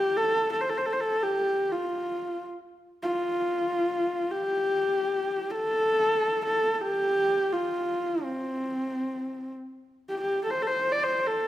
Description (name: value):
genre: mongolian traditional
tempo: 127 BPM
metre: 4/4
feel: straight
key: F gong mode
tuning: A4 = 440 Hz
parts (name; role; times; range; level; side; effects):
- warm horsehead fiddle; solo; 0.0-11.5 s; C4 to D5; -25 LUFS; equal; none
room: moderate recital hall reverb, RT60 1.6 s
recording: none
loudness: -25 LUFS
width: side -13 dB against mid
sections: 0.0-2.7 A section; 2.7-11.5 B section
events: none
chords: none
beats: 0.30 | 0.78 1.25 1.73 2.20 | 2.67 3.15 3.62 4.09 | 4.57 5.04 5.51 5.98 | 6.45 6.92 7.39 7.87 | 8.34 8.81 9.28 9.75 | 10.21 10.69 11.15